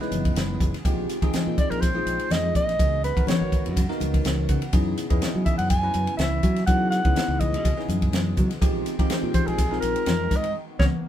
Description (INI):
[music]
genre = electric jazz fusion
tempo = 124 BPM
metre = 4/4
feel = swing 54% on 16ths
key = unclear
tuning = A4 = 441 Hz
[part]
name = bell-like tine electric piano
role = accompaniment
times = 0.0-10.9 s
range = Ab3 to Gb5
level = -30 LUFS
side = equal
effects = phaser
[part]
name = phased analog pad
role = sustained chords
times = 0.0-11.1 s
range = Cb3 to G5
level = -38 LUFS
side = left 1 dB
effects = phaser, chorus
[part]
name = crisp fusion drum kit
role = drums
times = 0.0-10.9 s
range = hi-hat, kick drum, ride cymbal, snare drum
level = -24 LUFS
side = equal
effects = none
[part]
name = modern bright fingered electric bass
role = bass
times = 0.1-10.9 s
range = Gb1 to Gb3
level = -27 LUFS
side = equal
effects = none
[part]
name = congas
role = percussion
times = 0.1-10.9 s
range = none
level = -30 LUFS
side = left 4 dB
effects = none
[part]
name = breathy soprano saxophone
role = melody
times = 1.6-10.9 s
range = Ab4 to Ab5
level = -26 LUFS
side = equal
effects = none
[sound]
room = moderate studio reverb, RT60 0.5 s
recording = band playing live in one room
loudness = -21 LUFS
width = side -11 dB against mid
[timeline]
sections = 0.0-11.1 A section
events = tine electric piano fill 4.0-4.7; band accent 10.6-11.1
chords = 0.0 Gb13sus4; 0.8 Bb13sus4; 2.8 Db13sus4; 4.7 Gb13sus4; 8.6 Bb13sus4; 10.6 Db13sus4